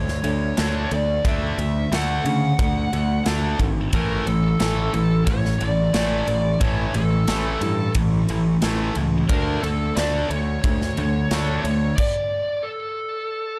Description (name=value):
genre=heavy metal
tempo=90 BPM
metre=4/4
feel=straight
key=unclear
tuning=A4 = 440 Hz
part: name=high-gain lead guitar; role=melody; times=0.0-13.6 s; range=A4 to F#5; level=-29 LUFS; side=equal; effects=distortion
part: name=tight distorted guitar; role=riff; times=0.0-11.9 s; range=A2 to D4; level=-26 LUFS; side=equal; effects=distortion
part: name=fuzz picked electric bass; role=bass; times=0.0-11.9 s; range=G#1 to C#3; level=-27 LUFS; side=equal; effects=overdrive
part: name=tight metal drum kit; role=drums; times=0.1-12.1 s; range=crash cymbal, kick drum, ride cymbal, snare drum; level=-28 LUFS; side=equal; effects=none
room=light reverb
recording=dark, warm production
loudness=-22 LUFS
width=mono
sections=0.0-13.6 A section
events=stop 12.0-13.6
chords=0.0 D; 3.9 A5; 9.3 D5